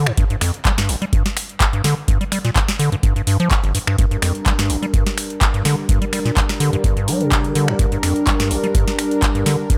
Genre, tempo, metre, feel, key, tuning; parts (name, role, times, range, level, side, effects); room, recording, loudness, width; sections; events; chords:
acid house; 126 BPM; 4/4; swing 54% on 16ths; G minor; A4 = 440 Hz
acid bass, square; riff; 0.0-9.8 s; G1 to G3; -22 LUFS; equal; tube saturation, sidechain pumping
booming analog drum machine; drums; 0.1-9.8 s; finger snaps, handclaps, hi-hat, snare drum; -25 LUFS; equal
electronic kick drum; drums; 0.2-9.8 s; -21 LUFS; equal
warm analog pad; sustained chords; 4.0-9.8 s; G3 to Bb4; -25 LUFS; equal; chorus, sidechain pumping
light reverb, digital ambience; -18 LUFS; mono
0.0-9.8 A section
0.0 Gm